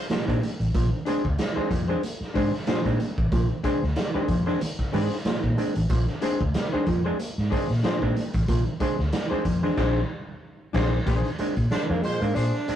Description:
funk; 93 BPM; 4/4; swing 56% on 16ths; Bb mixolydian; A4 = 440 Hz
warm horn section; second line; 0.0-0.1, 9.3-12.2 s; Ab3 to C5; -36 LUFS; left 1 dB
overdriven clav; stabs; 0.1-12.8 s; Bb2 to D4; -29 LUFS; right 2 dB; auto-wah
raw garage drum kit; drums; 0.1-12.8 s; crash cymbal, hi-hat, kick drum, snare drum; -28 LUFS; equal
congas; percussion; 0.1-12.5 s; -34 LUFS; right 2 dB
vintage muted fingered electric bass; bass; 0.3-12.7 s; A1 to Bb2; -26 LUFS; equal
hollow-body jazz guitar; accompaniment; 1.1-12.5 s; D4 to C5; -29 LUFS; left 4 dB
breathy tenor saxophone; melody; 11.7-12.8 s; Ab3 to D4; -28 LUFS; right 2 dB
light reverb; rough rehearsal-room recording, warm saturation, cassette tape; -22 LUFS; side -10 dB against mid
0.0-11.1 A section; 11.1-12.8 B section
band accent 0.0-0.8, 8.5-11.1; tenor saxophone solo 11.1-12.8
0.0 Bb9

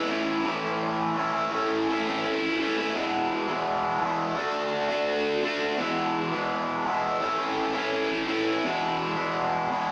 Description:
rock; 169 BPM; 4/4; straight; E mixolydian; A4 = 440 Hz
raw garage guitar; solo; 0.0-9.9 s; E2 to F#4; -27 LUFS; equal; overdrive, phaser
moderate stone room reverb, RT60 0.9 s; rough rehearsal-room recording; -27 LUFS; mono
0.0-2.9 A section; 2.9-9.9 B section
0.1 A; 2.9 E; 4.4 D; 5.8 E; 7.2 A; 8.6 E

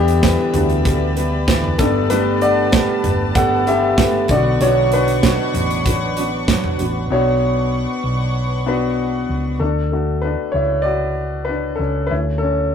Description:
piano-driven pop; 96 BPM; 4/4; straight; A4 = 445 Hz
clear concert grand piano; accompaniment; 0.0-12.7 s; D3 to F#5; -19 LUFS; left 2 dB
warm chamber string section; sustained chords; 0.0-9.6 s; D4 to C#6; -26 LUFS; left 3 dB
fingerpicked steel-string acoustic guitar; riff; 0.0-7.1 s; B2 to C#5; -22 LUFS; right 4 dB
hollow-body short-scale fingered electric bass; bass; 0.0-12.7 s; G1 to E2; -21 LUFS; equal
modern studio drum kit; drums; 0.1-6.9 s; hi-hat, kick drum, snare drum, toms; -19 LUFS; right 2 dB
moderate studio reverb, RT60 0.5 s; rough rehearsal-room recording, tube saturation; -15 LUFS; side -8 dB against mid
0.0-7.1 A section; 7.1-9.6 B section; 9.6-12.7 C section
grand piano solo 0.0-7.1, 9.6-12.7
0.0 Em7; 1.8 Gadd9; 4.3 Bmadd9; 9.6 D; 12.1 A

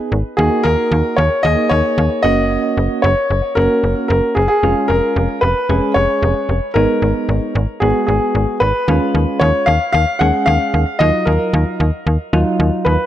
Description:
synth-pop; 113 BPM; 4/4; straight; A4 = 440 Hz
soft electric-piano-like synth keys; accompaniment; 0.0-13.0 s; Gb3 to Ab4; -20 LUFS; right 2 dB; chorus, tremolo
slap-like FM bass; bass; 0.1-13.0 s; F1 to Eb2; -16 LUFS; equal
warm concert grand piano; melody; 0.4-13.1 s; Ab4 to Gb5; -16 LUFS; left 1 dB; tape echo
light reverb, studio reverb; -13 LUFS; side -12 dB against mid
0.0-8.9 A section; 8.9-13.1 B section
0.4 Ebm; 2.2 Gb; 4.6 Db/F; 6.8 Abm; 8.9 Db/Eb; 11.0 Ebmadd9

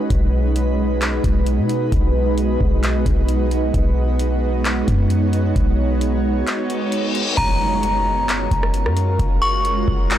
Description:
hip hop, atmospheric cloud-rap; 132 BPM; 4/4; half-time; B lydian; A4 = 442 Hz
shimmering ambient pad; sustained chords; 0.0-10.2 s; G#3 to C#5; -21 LUFS; right 2 dB; chorus, built-in reverb, sidechain pumping
clean 808-style bass; bass; 0.1-10.2 s; F#1 to B2; -20 LUFS; equal
booming analog drum machine; drums; 0.1-10.2 s; crash cymbal, handclaps, hi-hat, kick drum, rim click; -21 LUFS; equal
reverse cymbal and impact; sound effects; 6.7-9.2 s; -27 LUFS; left 3 dB
metallic FM bell; melody; 7.4-9.6 s; A#5 to C#6; -21 LUFS; left 1 dB; chorus, tape echo
light reverb, digital ambience; blown-out, overdriven recording, overdrive; -16 LUFS; side -11 dB against mid
0.0-7.4 A section; 7.4-10.2 B section
break 6.5-7.4; reverse cymbal 6.7-7.4; impact 7.4-9.2
0.1 B6; 7.4 F#maj9

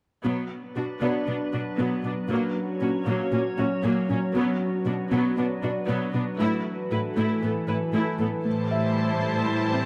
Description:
cinematic; 117 BPM; 4/4; straight; B minor; A4 = 440 Hz
clear symphonic viola section; accompaniment; 0.2-9.9 s; F#3 to B4; -33 LUFS; equal
harp-like synth pluck; arpeggios; 0.2-9.9 s; F#3 to B4; -33 LUFS; equal; chorus, tape echo
rich symphonic cello section; bass; 0.2-9.9 s; A2 to B2; -31 LUFS; equal
glassy FM pad; sustained chords; 0.7-9.9 s; E3 to C#5; -32 LUFS; equal; ensemble chorus, built-in reverb
felt-muted upright piano; texture; 1.0-9.9 s; D4 to E5; -38 LUFS; equal; tape echo
rich symphonic violin section; second line; 8.5-9.9 s; C5 to A5; -32 LUFS; equal
light reverb; close, detailed microphones; -26 LUFS; mono
0.2-8.5 A section; 8.5-9.9 B section
build-up 8.5-9.9
0.2 Bm; 2.3 F#/A#; 4.4 Bm; 6.4 Asus2; 8.5 Am7

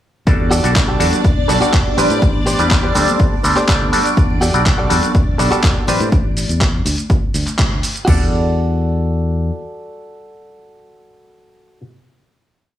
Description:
filtered disco house; 123 BPM; 4/4; straight; E minor; A4 = 440 Hz
auto-wah clav; accompaniment; 0.3-11.8 s; G3 to F#5; -20 LUFS; right 1 dB; phaser, sidechain pumping
phased string machine; sustained chords; 0.3-6.1 s; D4 to D5; -23 LUFS; left 1 dB; ensemble chorus, phaser, sidechain pumping
fingered electric bass; bass; 0.3-9.5 s; E1 to A2; -19 LUFS; left 1 dB; sidechain pumping
dusty soul sampler-style drum kit; drums; 0.3-8.1 s; handclaps, hi-hat, shaker; -21 LUFS; equal; sidechain pumping on hats, sidechain pumping on perc
house drum kit; drums; 0.3-8.2 s; crash cymbal, kick drum, toms; -16 LUFS; equal
tambourine and congas; percussion; 0.3-6.1 s; -26 LUFS; right 1 dB; sidechain pumping on perc
direct-recorded clean electric guitar; riff; 0.5-11.8 s; F#4 to D5; -22 LUFS; equal; vintage 12-bit sampler grit, sidechain pumping
light reverb; small room ambience; -13 LUFS; side -12 dB against mid
0.3-8.1 drop; 8.1-12.0 final chord
drop 0.3-8.1; clean electric guitar fill 3.4-4.2; band accent 7.6
0.3 Em11; 2.0 Am11; 3.0 D7sus4; 4.2 Em11; 5.9 Am11; 6.9 D5; 8.1 Em11

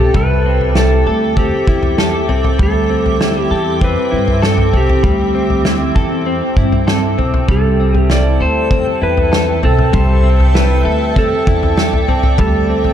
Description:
dream pop; 98 BPM; 4/4; straight; A4 = 439 Hz
clean lap steel guitar; melody; 0.0-12.9 s; G4 to D5; -18 LUFS; right 1 dB; tape echo
granular cloud pad; sustained chords; 0.0-12.9 s; C4 to D6; -21 LUFS; equal; built-in reverb
direct-recorded clean electric guitar; arpeggios; 0.0-12.9 s; G3 to A4; -19 LUFS; left 2 dB; analog chorus, tape echo
upright bass; bass; 0.0-12.9 s; B1 to G2; -16 LUFS; equal
loose indie drum kit; drums; 0.1-12.9 s; kick drum, snare drum, toms; -16 LUFS; equal
backwards swelling texture; texture; 8.3-12.7 s; D5 to G5; -29 LUFS; right 1 dB; built-in reverb, tape echo
light reverb, studio reverb; dark, warm production; -11 LUFS; side -10 dB against mid
0.0-12.9 A section
0.0 D9sus4

